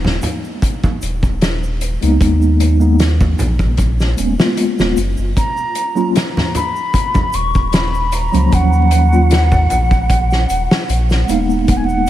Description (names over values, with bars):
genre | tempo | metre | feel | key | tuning
trip hop | 76 BPM | 4/4 | swing 53% on 16ths | Eb minor | A4 = 440 Hz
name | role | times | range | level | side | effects
warm sub bass | bass | 0.0-12.1 s | Eb1 to Eb2 | -15 LUFS | equal | none
congas and egg shaker | percussion | 0.0-12.1 s | none | -24 LUFS | right 1 dB | none
loose indie drum kit | drums | 0.1-12.1 s | hi-hat, kick drum, snare drum | -18 LUFS | equal | none
mellow tine electric piano | accompaniment | 2.0-12.1 s | F3 to F4 | -19 LUFS | equal | medium stereo tremolo, tape echo
mellow wooden flute | melody | 5.4-12.1 s | F5 to Db6 | -19 LUFS | right 1 dB | tape echo
room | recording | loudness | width
light reverb, studio reverb | vinyl crackle | -12 LUFS | side -13 dB against mid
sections
0.0-12.1 A section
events
none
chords
0.0 Ebm7